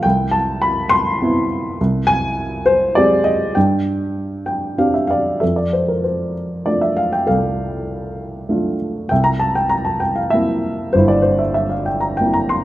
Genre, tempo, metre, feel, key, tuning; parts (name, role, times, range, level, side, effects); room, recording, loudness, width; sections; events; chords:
classical, lyrical solo piano; 93-104 BPM; 3/4; rubato; F major from 5.4 s; A4 = 441 Hz
dark upright piano; solo; 0.0-12.6 s; G1 to C6; -15 LUFS; equal
moderate recital hall reverb, RT60 1.5 s; -15 LUFS; side -15 dB against mid
0.0-5.4 A section; 5.4-12.6 B section
upright piano fill 4.2-5.4
0.0 Cmaj7; 1.8 Abmaj7/C; 3.6 Gsus4; 5.4 F6; 9.1 C7